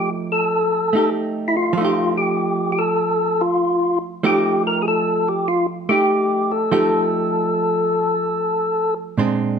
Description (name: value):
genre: jazz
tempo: 97 BPM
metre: 4/4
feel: swing 67% on 8ths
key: F mixolydian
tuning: A4 = 440 Hz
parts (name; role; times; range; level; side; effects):
- percussive tonewheel organ; melody; 0.0-8.9 s; E4 to Bb4; -18 LUFS; left 2 dB; slow rotary speaker, overdrive
- archtop guitar, miked and amplified; accompaniment; 0.0-9.6 s; Bb2 to G4; -22 LUFS; right 4 dB; none
room: moderate large studio reverb, RT60 1.0 s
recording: none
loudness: -17 LUFS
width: side -7 dB against mid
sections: 0.0-9.6 A section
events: none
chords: 0.0 F9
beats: 0.51 1.13 | 1.75 2.37 2.99 3.61 | 4.23 4.85 5.46 6.08 | 6.70 7.32 7.94 8.56 | 9.18